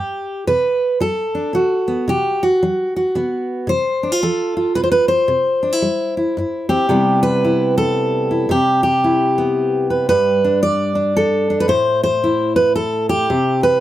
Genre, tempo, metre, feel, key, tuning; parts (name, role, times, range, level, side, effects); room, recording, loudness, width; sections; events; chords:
folk, solo fingerstyle acoustic guitar; 112 BPM; 3/4; swing 63% on 8ths; C major; A4 = 440 Hz
fingerpicked steel-string acoustic guitar; solo; 0.0-13.8 s; G2 to D5; -15 LUFS; equal
light reverb; -15 LUFS; side -13 dB against mid
0.0-6.9 A section; 6.9-13.8 B section
0.5 D6/C (rootless); 3.7 F/C; 5.3 C; 6.9 Cmaj7; 10.1 G; 11.7 Am; 13.3 Cmaj7